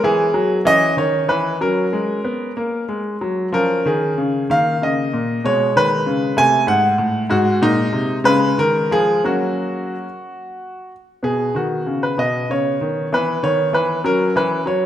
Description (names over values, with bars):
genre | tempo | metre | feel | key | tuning
classical, baroque-style suite movement for grand piano | 63 BPM (dotted quarters) | 6/8 | rubato | F# major from 3.5 s, B major from 11.2 s | A4 = 440 Hz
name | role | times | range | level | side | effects
bright baby grand piano | solo | 0.0-14.9 s | G#2 to G#5 | -16 LUFS | equal | none
room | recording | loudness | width
wet recital hall reverb, RT60 1.7 s | none | -16 LUFS | side -11 dB against mid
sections
0.0-11.2 A section; 11.2-14.9 A section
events
none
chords
0.0 G#m; 0.7 C#m; 1.6 F#; 3.5 C#; 4.5 D#5; 5.5 G#m/B; 6.4 G#7b9; 7.3 G#; 8.3 C#; 9.2 F#; 11.2 B; 13.1 E5; 14.0 F#5